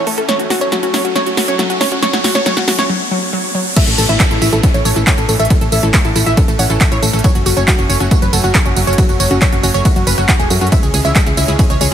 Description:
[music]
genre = uplifting trance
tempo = 138 BPM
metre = 4/4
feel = straight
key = A major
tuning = A4 = 440 Hz
[part]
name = wide unison pluck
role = melody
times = 0.0-11.9 s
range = F#4 to F#5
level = -18 LUFS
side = right 1 dB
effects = sidechain pumping, dub echo
[part]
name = supersaw pad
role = sustained chords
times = 0.0-11.9 s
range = E3 to C#4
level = -25 LUFS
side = right 1 dB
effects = sidechain pumping
[part]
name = wide unison pluck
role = arpeggios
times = 0.0-11.9 s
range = F#3 to C#5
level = -21 LUFS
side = left 2 dB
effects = sidechain pumping, tape echo
[part]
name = solid FM bass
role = bass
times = 0.0-11.9 s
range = E1 to F#2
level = -17 LUFS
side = equal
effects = sidechain pumping, high-pass filter
[part]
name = riser and downlifter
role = sound effects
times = 0.2-7.2 s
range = none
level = -23 LUFS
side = equal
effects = none
[part]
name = big-room dance drum kit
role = drums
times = 0.1-11.9 s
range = crash cymbal, handclaps, hi-hat, ride cymbal, snare drum, tambourine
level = -18 LUFS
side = right 2 dB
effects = overdrive
[part]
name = electronic kick drum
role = drums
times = 3.8-11.7 s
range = none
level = -14 LUFS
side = equal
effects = overdrive
[sound]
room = light reverb, digital ambience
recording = none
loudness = -11 LUFS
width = side -9 dB against mid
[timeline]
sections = 0.0-3.8 A section; 3.8-11.9 B section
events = build-up 0.0-3.8; drum fill 0.0-2.9; riser 0.2-3.8; break 2.9-3.8; drop 3.8-11.9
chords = 0.3 F#m; 3.8 A; 7.2 F#m; 10.7 C#m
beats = | 0.29 0.72 1.16 1.59 | 2.02 2.46 2.90 3.33 | 3.77 4.20 4.63 5.07 | 5.50 5.94 6.37 6.81 | 7.24 7.68 8.11 8.55 | 8.98 9.42 9.85 10.29 | 10.72 11.16 11.59

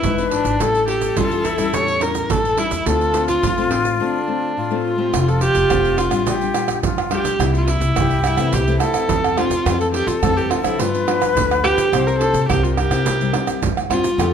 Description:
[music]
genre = samba and choro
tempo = 106 BPM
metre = 4/4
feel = straight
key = D minor, F major from 5.1 s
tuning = A4 = 441 Hz
[part]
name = warm viola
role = melody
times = 0.0-14.3 s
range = C4 to C#5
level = -20 LUFS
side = right 1 dB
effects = none
[part]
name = mellow silver concert flute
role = second line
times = 0.0-14.3 s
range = E4 to C5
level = -24 LUFS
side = left 5 dB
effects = none
[part]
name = nylon-string guitar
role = accompaniment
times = 0.0-14.3 s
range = F2 to G4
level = -25 LUFS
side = left 7 dB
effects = none
[part]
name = upright bass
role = bass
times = 0.0-14.3 s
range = F1 to F3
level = -23 LUFS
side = left 1 dB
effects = none
[part]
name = egg shaker, surdo, pandeiro and tamborim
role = percussion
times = 0.0-14.3 s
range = none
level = -22 LUFS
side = right 7 dB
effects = none
[sound]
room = moderate large studio reverb, RT60 1.1 s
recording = none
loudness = -16 LUFS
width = side -8 dB against mid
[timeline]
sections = 0.0-5.1 A section; 5.1-14.3 B section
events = break 4.0-5.1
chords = 0.0 E7/G#; 0.6 A7; 2.9 Dm7; 5.1 Fadd9; 6.3 Bb6; 7.4 C7; 8.5 Am/C; 9.7 Fmaj7; 10.8 G7; 11.9 C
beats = 0.04 | 0.60 1.17 1.74 2.30 | 2.87 3.43 4.00 4.57 | 5.13 5.70 6.27 6.83 | 7.40 7.96 8.53 9.10 | 9.66 10.23 10.79 11.36 | 11.93 12.49 13.06 13.62 | 14.19

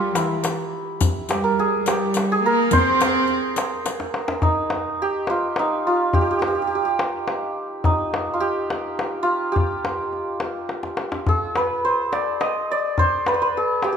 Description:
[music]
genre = Persian modal ensemble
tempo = 70 BPM (dotted quarters)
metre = 6/8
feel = straight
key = unclear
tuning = A4 = 440 Hz
[part]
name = santur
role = melody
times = 0.0-14.0 s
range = Eb4 to Eb5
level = -21 LUFS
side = right 1 dB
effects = none
[part]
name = warm studio cello section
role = second line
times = 0.0-3.8 s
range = E3 to C4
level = -24 LUFS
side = equal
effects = none
[part]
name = riq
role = percussion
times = 0.2-4.0 s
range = none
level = -31 LUFS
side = left 7 dB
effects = none
[part]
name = tombak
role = percussion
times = 0.2-14.0 s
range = none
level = -24 LUFS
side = left 2 dB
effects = none
[sound]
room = moderate recital hall reverb, RT60 1.8 s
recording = minimal, uncompressed stereo recording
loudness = -19 LUFS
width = side -7 dB against mid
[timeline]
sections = 0.0-4.4 A section; 4.4-14.0 B section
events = drum fill 3.9-4.4, 10.7-11.3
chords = none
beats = 0.15 | 1.00 1.86 | 2.71 3.56 | 4.42 5.27 | 6.13 6.98 | 7.84 8.69 | 9.55 10.40 | 11.26 12.12 | 12.97 13.83

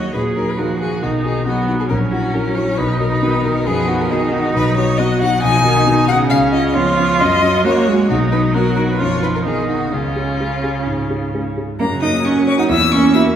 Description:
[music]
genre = quick classical-period movement for piano quartet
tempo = 135 BPM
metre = 4/4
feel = rubato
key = F# major from 4.5 s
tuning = A4 = 440 Hz
[part]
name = rich violin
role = melody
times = 0.0-13.2 s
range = E#4 to E6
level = -20 LUFS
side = left 4 dB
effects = none
[part]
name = clear cello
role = second line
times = 0.0-13.2 s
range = C#3 to E4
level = -20 LUFS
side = right 3 dB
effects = none
[part]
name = dark concert grand piano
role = accompaniment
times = 0.0-13.4 s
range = Bb1 to F#5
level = -18 LUFS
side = left 2 dB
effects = none
[part]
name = rich viola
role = accompaniment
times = 0.0-13.4 s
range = F#3 to Ab4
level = -21 LUFS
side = right 2 dB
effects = none
[sound]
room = wet scoring stage reverb, RT60 1.9 s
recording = recorded in a church or concert hall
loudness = -14 LUFS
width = side -9 dB against mid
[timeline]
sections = 0.0-11.8 A section; 11.8-13.4 B section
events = none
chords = 0.0 Ebm; 1.0 B; 1.9 Gb7/Bb; 2.8 B; 6.3 C#7; 7.2 F#; 8.1 B; 9.9 C#; 11.8 F#; 12.7 F#7/E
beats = 0.14 0.58 | 1.02 1.46 1.90 2.34 | 2.78 3.22 3.66 4.10 | 4.55 4.99 5.42 5.86 | 6.30 6.75 7.20 7.64 | 8.09 8.54 9.00 9.45 | 9.92 10.39 10.86 11.33 | 11.80 12.25 12.70 13.15

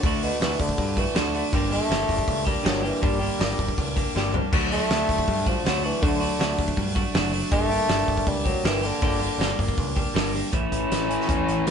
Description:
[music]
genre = indie rock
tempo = 160 BPM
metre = 4/4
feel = straight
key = D major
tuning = A4 = 439 Hz
[part]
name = warm bassoon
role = melody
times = 0.0-11.7 s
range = B2 to C#4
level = -27 LUFS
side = equal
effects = none
[part]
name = overdriven electric guitar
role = riff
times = 0.0-11.7 s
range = G2 to G4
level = -26 LUFS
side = equal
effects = spring reverb
[part]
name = growling picked electric bass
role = bass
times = 0.0-11.7 s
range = F#1 to G2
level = -30 LUFS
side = equal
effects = overdrive
[part]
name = loose indie drum kit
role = drums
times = 0.0-11.7 s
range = crash cymbal, hi-hat, kick drum, snare drum, toms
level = -25 LUFS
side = equal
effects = none
[sound]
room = moderate stone room reverb, RT60 1.0 s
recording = band playing live in one room, nothing above 10.6 kHz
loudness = -21 LUFS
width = side -7 dB against mid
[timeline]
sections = 0.0-10.5 A section; 10.5-11.7 B section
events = bassoon solo 0.0-10.5; drum fill 4.1-4.5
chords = 0.0 D; 1.5 Gmadd9; 4.5 D; 7.5 Gmadd9; 10.5 A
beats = | 0.04 0.41 0.78 1.16 | 1.53 1.90 2.28 2.65 | 3.02 3.40 3.77 4.15 | 4.52 4.89 5.27 5.64 | 6.02 6.39 6.77 7.14 | 7.52 7.89 8.27 8.65 | 9.02 9.40 9.78 10.15 | 10.53 10.91 11.29 11.67

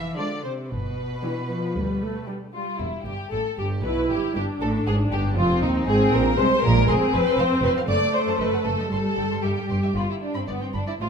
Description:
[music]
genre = quick classical-period movement for string orchestra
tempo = 116 BPM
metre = 4/4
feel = straight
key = unclear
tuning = A4 = 441 Hz
[part]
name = muted studio violin section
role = melody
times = 0.0-11.1 s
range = Eb4 to C6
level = -34 LUFS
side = left 1 dB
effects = none
[part]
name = muted chamber double bass section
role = bass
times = 0.0-11.1 s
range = E1 to Eb2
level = -26 LUFS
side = right 1 dB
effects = none
[part]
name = muted studio cello section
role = bass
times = 0.0-11.1 s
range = Eb2 to E3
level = -30 LUFS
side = equal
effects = none
[part]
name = muted studio violin section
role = second line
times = 0.2-11.1 s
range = B3 to D5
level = -24 LUFS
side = left 1 dB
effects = none
[part]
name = muted studio viola section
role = accompaniment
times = 0.2-10.7 s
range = E3 to E4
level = -26 LUFS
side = right 1 dB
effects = none
[sound]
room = wet stone room reverb, RT60 1.4 s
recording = none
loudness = -21 LUFS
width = side -6 dB against mid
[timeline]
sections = 0.0-2.8 A section; 2.8-11.1 B section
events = none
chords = 0.0 Dm7b5; 0.7 G; 2.8 Emadd11; 3.8 G; 4.9 Ab; 6.9 Fm; 7.9 F#dim; 8.9 N.C.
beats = 0.18 | 0.70 1.23 1.75 2.27 | 2.80 3.32 3.84 4.35 | 4.86 5.37 5.88 6.38 | 6.89 7.39 7.89 8.40 | 8.92 9.44 9.96 10.49 | 11.00

